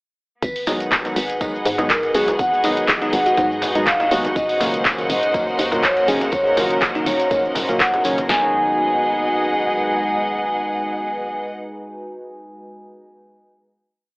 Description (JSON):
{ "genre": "deep house", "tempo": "122 BPM", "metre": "4/4", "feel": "swing 54% on 16ths", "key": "G# minor", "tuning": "A4 = 438 Hz", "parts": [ { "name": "vibraphone with medium mallets", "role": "melody", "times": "0.4-11.3 s", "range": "A#4 to G#5", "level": "-21 LUFS", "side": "equal", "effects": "analog delay" }, { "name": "deep dark ambient pad", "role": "sustained chords", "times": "1.3-11.4 s", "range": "G#3 to B4", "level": "-28 LUFS", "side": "equal", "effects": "chorus, built-in reverb, sidechain pumping" }, { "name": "hollow knocking FM bass", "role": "bass", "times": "0.4-9.7 s", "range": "D#1 to G#2", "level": "-26 LUFS", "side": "equal", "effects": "none" }, { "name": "cloth-damped thuddy drum kit", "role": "drums", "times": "0.4-8.2 s", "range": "hi-hat, snare drum, tambourine", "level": "-36 LUFS", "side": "equal", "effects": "none" }, { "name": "deep house drum kit", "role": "drums", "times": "0.4-8.4 s", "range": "kick drum, snare drum", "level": "-26 LUFS", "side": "equal", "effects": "none" }, { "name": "deep house drum kit", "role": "drums", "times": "0.4-8.3 s", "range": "handclaps, hi-hat, shaker", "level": "-22 LUFS", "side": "equal", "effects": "none" }, { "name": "rich studio string section", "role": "texture", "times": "0.4-11.6 s", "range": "B3 to F#5", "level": "-25 LUFS", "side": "equal", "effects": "sidechain pumping" }, { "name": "warm analog keys", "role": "stabs", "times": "0.7-11.4 s", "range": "A#2 to F#4", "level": "-25 LUFS", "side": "equal", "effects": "chorus, sidechain pumping, diffuse ambient delay" }, { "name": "congas", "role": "percussion", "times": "0.7-8.3 s", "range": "none", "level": "-30 LUFS", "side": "equal", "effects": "none" }, { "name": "bell-like FM electric piano", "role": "melody", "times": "2.1-7.2 s", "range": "D#4 to G#4", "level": "-26 LUFS", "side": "equal", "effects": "none" }, { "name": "soft string machine", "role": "texture", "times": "4.4-8.3 s", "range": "B#4 to B#5", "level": "-32 LUFS", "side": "equal", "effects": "none" } ], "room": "moderate plate reverb, RT60 1.5 s, studio reverb", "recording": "dreamy mix soaked in reverb, telephone sound", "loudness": "-16 LUFS", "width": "side -40 dB against mid", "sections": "0.4-8.3 drop; 8.3-12.2 final chord", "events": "drop 0.4-8.3", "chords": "0.4 G#m7; 4.4 D#m7; 8.3 G#m7" }